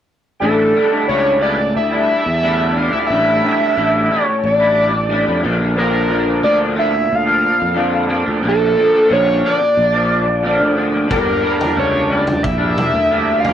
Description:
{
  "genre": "psychedelic rock",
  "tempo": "90 BPM",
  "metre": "4/4",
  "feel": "straight",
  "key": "A phrygian dominant",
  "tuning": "A4 = 440 Hz",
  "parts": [
    { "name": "overdriven synth lead", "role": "melody", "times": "0.4-13.5 s", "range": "A4 to F5", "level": "-16 LUFS", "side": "equal", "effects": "phaser" },
    { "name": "overdriven tonewheel organ", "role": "sustained chords", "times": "0.4-13.5 s", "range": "Bb3 to A4", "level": "-30 LUFS", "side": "right 4 dB", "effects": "none" },
    { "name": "electric guitar through a small old amp", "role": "riff", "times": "0.4-13.5 s", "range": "G2 to E4", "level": "-18 LUFS", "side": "equal", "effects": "rotary speaker" },
    { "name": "fuzz fingered electric bass", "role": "bass", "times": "0.4-13.5 s", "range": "G1 to F2", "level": "-20 LUFS", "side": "equal", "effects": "overdrive" },
    { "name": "vintage drum kit", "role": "drums", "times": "11.1-13.5 s", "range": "kick drum, toms", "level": "-23 LUFS", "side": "equal", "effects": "none" }
  ],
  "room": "moderate studio reverb, RT60 0.5 s",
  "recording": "rough rehearsal-room recording",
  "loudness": "-13 LUFS",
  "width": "side -10 dB against mid",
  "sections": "0.4-13.5 A section",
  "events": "none",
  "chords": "0.4 A7sus4; 5.4 Bb; 11.1 Gm"
}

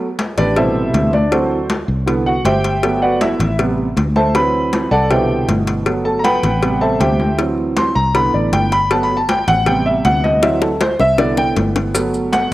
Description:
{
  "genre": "latin, salsa",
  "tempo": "158 BPM",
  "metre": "4/4",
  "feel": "straight",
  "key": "G major",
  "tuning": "A4 = 441 Hz",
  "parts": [
    { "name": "clear concert grand piano", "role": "accompaniment", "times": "0.0-12.5 s", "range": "B2 to C6", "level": "-15 LUFS", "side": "right 1 dB", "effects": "cassette tape" },
    { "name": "congas", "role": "percussion", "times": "0.0-12.5 s", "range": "none", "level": "-23 LUFS", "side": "left 1 dB", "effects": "none" },
    { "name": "cowbell and bongos", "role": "percussion", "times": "0.2-12.5 s", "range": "none", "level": "-23 LUFS", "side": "left 4 dB", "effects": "none" },
    { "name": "fingered electric bass", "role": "bass", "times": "0.4-12.5 s", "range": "G1 to D2", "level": "-20 LUFS", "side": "equal", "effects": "none" },
    { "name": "maracas", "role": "percussion", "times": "11.9-12.5 s", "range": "none", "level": "-26 LUFS", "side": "right 2 dB", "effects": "none" }
  ],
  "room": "light reverb, small room ambience",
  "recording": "home recording on cassette",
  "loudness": "-13 LUFS",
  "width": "side -16 dB against mid",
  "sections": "0.0-12.5 A section",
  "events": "grand piano solo 0.0-12.5; drum fill 10.4-12.0",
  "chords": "0.0 G; 0.6 Am7; 1.3 D7; 2.1 Cmaj7; 2.8 Gmaj7; 3.6 Am7; 4.3 D7; 5.1 Cmaj7; 5.9 Gmaj7; 6.6 Am7; 7.4 D7; 8.2 Cmaj7; 8.9 Gmaj7; 9.7 Am7; 10.4 D7; 11.2 Cmaj7; 12.0 Gmaj7"
}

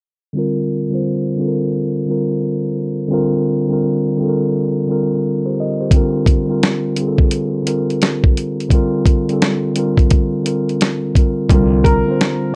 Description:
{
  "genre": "lo-fi hip hop",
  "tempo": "86 BPM",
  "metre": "4/4",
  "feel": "swing 64% on 16ths",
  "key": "unclear",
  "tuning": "A4 = 438 Hz",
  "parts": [
    { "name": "mellow tine electric piano", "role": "accompaniment", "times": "0.3-12.6 s", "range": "D3 to Eb5", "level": "-19 LUFS", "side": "equal", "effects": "low-pass filter" },
    { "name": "dusty soul sampler-style drum kit", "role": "drums", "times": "5.9-12.4 s", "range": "hi-hat, kick drum, snare drum", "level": "-16 LUFS", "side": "equal", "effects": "vintage 12-bit sampler grit" },
    { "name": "upright bass", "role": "bass", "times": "11.5-12.0 s", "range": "C2", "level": "-18 LUFS", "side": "equal", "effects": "none" },
    { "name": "clear upright piano", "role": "melody", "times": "11.8-12.5 s", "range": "Bb4", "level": "-21 LUFS", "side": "equal", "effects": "low-pass filter" }
  ],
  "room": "light reverb",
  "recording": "dry, gritty hardware recording",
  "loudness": "-17 LUFS",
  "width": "mono",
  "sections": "0.3-11.5 A section; 11.5-12.6 B section",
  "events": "filter sweep on tine electric piano 0.3-11.5",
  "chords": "0.3 Csus2; 5.9 Gm9; 11.5 Csus2"
}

